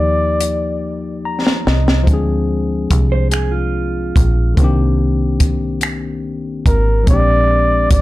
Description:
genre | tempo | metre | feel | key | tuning
slow six-eight R&B | 48 BPM (dotted quarters) | 6/8 | straight | unclear | A4 = 440 Hz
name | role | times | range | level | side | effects
breathy flugelhorn | melody | 0.0-1.2, 6.7-8.0 s | Bb4 to D5 | -17 LUFS | equal | plate reverb
tine electric piano | accompaniment | 0.0-8.0 s | D3 to Bb5 | -20 LUFS | left 4 dB | none
deep dub fingered electric bass | bass | 0.0-8.0 s | Ab1 to Eb2 | -17 LUFS | equal | none
compact cocktail drum kit | drums | 0.4-8.0 s | finger snaps, hi-hat, kick drum, snare drum | -15 LUFS | equal | none
mellow electric guitar | second line | 3.1-4.5 s | F4 to C5 | -23 LUFS | right 6 dB | none
room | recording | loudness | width
little or no reverb | none | -13 LUFS | side -17 dB against mid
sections
0.0-8.0 A section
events
drum fill 0.8-2.1; tine electric piano fill 0.8-2.1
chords
0.0 Ebmaj9; 2.1 Dm7b5; 4.6 Cm9; 7.1 Bb13

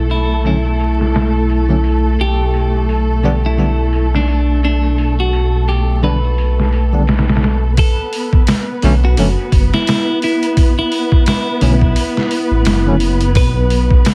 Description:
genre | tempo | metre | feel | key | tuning
trip hop | 86 BPM | 4/4 | swing 58% on 16ths | B minor | A4 = 439 Hz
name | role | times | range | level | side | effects
clean electric guitar | melody | 0.0-14.0 s | D4 to B4 | -22 LUFS | equal | phaser, tape echo
muted studio string section | sustained chords | 0.0-14.1 s | A3 to B4 | -24 LUFS | equal | vintage 12-bit sampler grit
dark detuned saw bass | bass | 0.0-14.0 s | F#1 to B1 | -17 LUFS | equal | none
trip hop sampler-style drum kit | drums | 0.1-14.1 s | hi-hat, kick drum, snare drum | -18 LUFS | equal | low-pass filter on hats, low-pass filter on snare, low-pass filter on kick, low-pass filter on room
barky tine electric piano | accompaniment | 0.4-12.9 s | D3 to D4 | -21 LUFS | equal | tremolo, vintage 12-bit sampler grit
room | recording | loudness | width
little or no reverb | vinyl crackle | -14 LUFS | mono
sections
0.0-7.8 A section; 7.8-14.1 B section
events
none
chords
0.0 B7(no3); 2.2 G/B (rootless); 7.8 B5; 13.4 N.C.

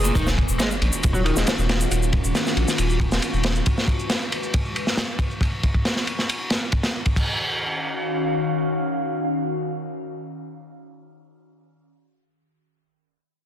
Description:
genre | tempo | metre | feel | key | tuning
breakbeat, breaks | 137 BPM | 4/4 | straight | Eb minor | A4 = 441 Hz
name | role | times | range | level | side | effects
warbly tape-like pad | sustained chords | 0.0-11.4 s | Eb3 to F5 | -27 LUFS | left 1 dB | chorus, built-in reverb, phaser, sidechain pumping
overdriven electric guitar | riff | 0.0-1.4 s | Bb2 to Ab3 | -28 LUFS | equal | tube saturation, vintage 12-bit sampler grit, low-pass filter, ping-pong delay
saturated sub bass | bass | 0.0-3.6 s | Eb1 to Bb1 | -23 LUFS | equal | none
shaker | drums | 0.0-7.1 s | none | -32 LUFS | left 1 dB | low-pass filter on perc, low-pass filter on hats, low-pass filter on snare
crunchy breakbeat drum kit | drums | 0.2-7.3 s | crash cymbal, kick drum, ride cymbal, snare drum | -22 LUFS | equal | none
sub drop | sound effects | 0.2-1.9 s | none | -32 LUFS | equal | none
room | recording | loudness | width
light reverb, small room ambience | dense, heavily limited modern master | -20 LUFS | side -10 dB against mid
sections
0.2-7.2 A section; 7.2-10.7 B section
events
impact 0.2-1.9; filter sweep on overdriven electric guitar 0.2-1.9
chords
0.2 Ebm9; 3.7 Abm7; 7.2 Ebm9

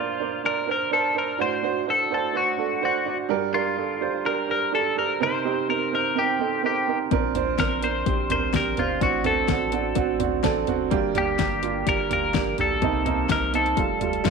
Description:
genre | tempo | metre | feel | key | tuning
piano-driven pop | 126 BPM | 4/4 | straight | Bb major | A4 = 439 Hz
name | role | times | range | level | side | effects
twelve-string electric guitar | melody | 0.0-14.3 s | F4 to C5 | -25 LUFS | left 3 dB | spring reverb
clear upright piano | accompaniment | 0.0-14.3 s | G2 to A5 | -25 LUFS | right 11 dB | none
round analog bass | bass | 7.1-14.3 s | F1 to C2 | -32 LUFS | left 2 dB | none
deep house drum kit | drums | 7.1-14.3 s | hi-hat, kick drum, snare drum, toms | -28 LUFS | left 8 dB | none
room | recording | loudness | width
moderate echo chamber reverb, RT60 1.2 s, digital ambience | 1960s-style stereo with parts hard left and right | -21 LUFS | side -4 dB against mid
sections
0.0-14.3 A section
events
upright piano fill 10.2-10.9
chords
0.0 Bbadd9; 1.4 D7/A; 3.3 Gm; 5.2 Cm7; 7.1 Bbadd9; 9.0 D7/A; 10.9 Gm; 12.8 Cm7; 13.8 Fadd9

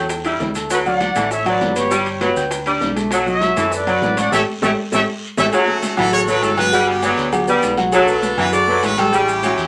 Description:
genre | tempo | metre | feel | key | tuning
latin, salsa | 199 BPM | 4/4 | straight | D major | A4 = 436 Hz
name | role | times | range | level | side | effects
clear saxophone section | second line | 0.0-9.7 s | E3 to A3 | -23 LUFS | equal | none
warm grand piano | accompaniment | 0.0-9.7 s | F#3 to G6 | -23 LUFS | equal | none
fingered electric bass | bass | 0.0-9.7 s | G1 to F#2 | -34 LUFS | equal | none
bongos and cowbell | percussion | 0.1-9.7 s | none | -30 LUFS | equal | none
congas | percussion | 0.1-9.6 s | none | -30 LUFS | equal | none
guiro | percussion | 0.1-9.7 s | none | -36 LUFS | equal | none
maracas | percussion | 0.1-9.7 s | none | -36 LUFS | equal | none
timbales and agogo bells | percussion | 0.1-9.6 s | none | -30 LUFS | equal | none
warm trumpet section | melody | 0.7-5.5 s | F#4 to F#5 | -22 LUFS | equal | none
brilliant horn section | melody | 5.5-9.7 s | A3 to D5 | -21 LUFS | equal | none
room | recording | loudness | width
wet studio ambience, RT60 0.5 s | none | -17 LUFS | mono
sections
0.0-5.5 A section; 5.5-9.7 B section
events
drum fill 4.3-5.5; band accent 4.3-5.5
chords
0.0 A7(no3); 0.7 Dmaj7; 1.9 G; 3.1 Bm7; 4.3 A7; 5.5 Dmaj7 (rootless); 6.7 Gmaj7; 7.9 Bm7; 9.1 A7

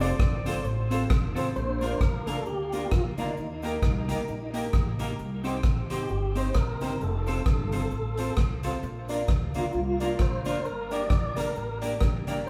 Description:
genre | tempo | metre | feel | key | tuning
ska | 132 BPM | 4/4 | swing 58% on 8ths | Bb major | A4 = 441 Hz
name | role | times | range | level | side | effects
breathy alto saxophone | melody | 0.0-1.1 s | C5 to D5 | -38 LUFS | equal | none
clean electric guitar | accompaniment | 0.0-12.4 s | Bb3 to C5 | -37 LUFS | equal | spring reverb, tape echo
warm upright piano | stabs | 0.0-12.4 s | Bb3 to D5 | -38 LUFS | equal | none
upright bass | bass | 0.0-12.5 s | F1 to Eb2 | -35 LUFS | equal | none
street-band drum kit | drums | 0.0-12.4 s | hi-hat, kick drum, rim click | -30 LUFS | equal | none
cabasa | percussion | 0.0-12.5 s | none | -60 LUFS | equal | none
mellow tonewheel organ | melody | 1.6-12.5 s | Eb4 to D5 | -35 LUFS | equal | chorus vibrato, fast rotary speaker
room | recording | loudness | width
wet large studio reverb, RT60 1.2 s | band playing live in one room | -28 LUFS | mono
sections
0.0-1.6 A section; 1.6-12.5 B section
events
alto saxophone solo 0.0-1.6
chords
0.0 F; 1.6 Bb; 3.4 Eb; 5.2 Cm; 7.0 F; 8.8 Bb; 10.6 Gm

